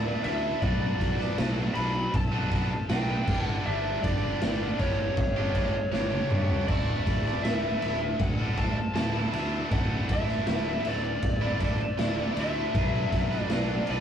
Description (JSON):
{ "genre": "quiet-loud alternative rock", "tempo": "79 BPM", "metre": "4/4", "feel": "straight", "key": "D major", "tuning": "A4 = 440 Hz", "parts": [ { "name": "lead guitar through a small cranked amp", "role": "melody", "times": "0.0-14.0 s", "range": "C#5 to B5", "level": "-32 LUFS", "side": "equal", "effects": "overdrive" }, { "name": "high-gain distorted guitar", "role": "riff", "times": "0.0-14.0 s", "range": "D2 to B4", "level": "-33 LUFS", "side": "right 1 dB", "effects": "distortion" }, { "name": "fuzz fingered electric bass", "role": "bass", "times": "0.0-14.0 s", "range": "D1 to G2", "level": "-32 LUFS", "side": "equal", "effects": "overdrive" }, { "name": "raw garage drum kit", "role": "drums", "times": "0.2-14.0 s", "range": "crash cymbal, kick drum, ride cymbal, snare drum, toms", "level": "-28 LUFS", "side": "equal", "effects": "none" } ], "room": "moderate booth ambience, RT60 0.2 s", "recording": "rough rehearsal-room recording", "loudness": "-25 LUFS", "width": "side -9 dB against mid", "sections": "0.0-14.0 A section", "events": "drum fill 5.9-6.7", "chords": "0.0 Dsus2; 0.6 Bm; 3.3 G; 6.7 Dsus2; 12.7 Bm" }